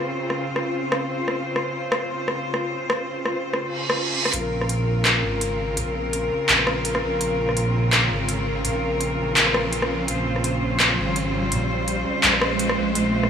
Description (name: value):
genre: half-time drum and bass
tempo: 167 BPM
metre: 4/4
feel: swing 55% on 16ths, half-time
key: Bb minor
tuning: A4 = 440 Hz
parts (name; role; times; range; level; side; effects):
- bright studio cello section; sustained chords; 0.0-13.3 s; Db3 to C5; -25 LUFS; left 1 dB; vintage 12-bit sampler grit
- pulsing gated texture; texture; 0.0-4.3 s; F4; -34 LUFS; left 1 dB; chorus, built-in reverb
- industrial drum kit; drums; 0.3-13.3 s; handclaps, hi-hat, rim click; -22 LUFS; equal; overdrive
- reverse cymbal and riser; sound effects; 3.7-13.3 s; none; -29 LUFS; right 2 dB; none
- dark detuned saw bass; bass; 4.3-13.3 s; Ab1 to Bb1; -26 LUFS; right 1 dB; none
room: moderate huge ambient reverb, RT60 5.3 s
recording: none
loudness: -20 LUFS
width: side -7 dB against mid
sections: 0.0-4.3 A section; 4.3-13.3 B section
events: reverse cymbal 3.7-4.3; build-up 4.3-13.3; riser 4.3-13.3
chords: 0.0 Bbmadd9 (rootless); 4.3 Bbmadd9